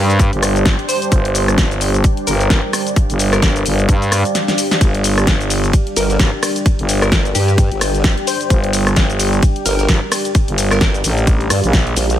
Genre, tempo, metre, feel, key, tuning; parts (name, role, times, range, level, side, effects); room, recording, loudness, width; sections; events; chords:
bass house; 130 BPM; 4/4; swing 58% on 16ths; A4 = 441 Hz
glassy wavetable pluck; melody; 0.0-10.9 s; G4 to C5; -24 LUFS; left 1 dB; chorus, ping-pong delay
dark analog pad; sustained chords; 0.0-12.2 s; G3 to C5; -24 LUFS; equal; chorus, sidechain pumping
growling FM bass; bass; 0.0-11.9 s; G1 to G2; -16 LUFS; equal; overdrive, sidechain pumping
deep dark ambient pad; texture; 0.0-12.2 s; G4 to G5; -24 LUFS; right 1 dB; chorus, built-in reverb, sidechain pumping
big-room dance drum kit; drums; 0.1-12.2 s; hi-hat, ride cymbal, rim click, shaker, snare drum; -19 LUFS; left 1 dB
electronic kick drum; drums; 0.2-11.8 s; -14 LUFS; equal
formant-sweep wobble bass; bass; 6.0-12.2 s; G1 to G2; -17 LUFS; equal; chorus, sidechain pumping
digital ambience; -12 LUFS; side -11 dB against mid
0.0-12.2 A section
drum fill 4.3-4.8
0.0 G5